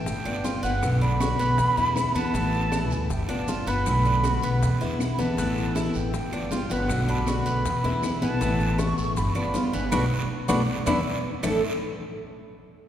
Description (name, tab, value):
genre	latin, Cuban son and guajira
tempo	158 BPM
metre	4/4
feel	straight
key	unclear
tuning	A4 = 439 Hz
part	concert flute	melody	0.0-11.6 s	F#5 to C#6	-29 LUFS	right 2 dB	none
part	picked steel-string acoustic guitar	accompaniment	0.0-11.6 s	A2 to F#4	-30 LUFS	left 3 dB	none
part	upright bass	bass	0.0-11.6 s	G1 to E2	-27 LUFS	equal	none
part	bongos	percussion	0.1-11.5 s	none	-37 LUFS	left 4 dB	none
part	congas	percussion	0.1-11.5 s	none	-33 LUFS	equal	none
part	guiro	percussion	0.1-11.5 s	none	-41 LUFS	right 4 dB	none
part	maracas	percussion	0.1-11.5 s	none	-43 LUFS	left 5 dB	none
part	Cuban tres	arpeggios	0.3-11.6 s	A3 to A4	-32 LUFS	right 2 dB	none
part	claves	percussion	0.3-11.5 s	none	-43 LUFS	right 5 dB	none
room	wet church reverb, RT60 2.7 s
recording	recorded in a church or concert hall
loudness	-22 LUFS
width	side -10 dB against mid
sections	0.0-11.4 A section; 11.4-12.9 B section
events	band accent 9.9-11.4; drum fill 10.7-11.4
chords	0.1 G7; 0.8 Bm7; 1.6 E7; 2.3 Asus2; 3.1 G7; 3.9 Bm7; 4.6 E7; 5.4 Asus2; 6.1 G7; 6.9 Bm7; 7.6 E7; 8.4 Asus2; 9.2 G7; 9.9 Bm7; 10.7 E5; 11.4 A5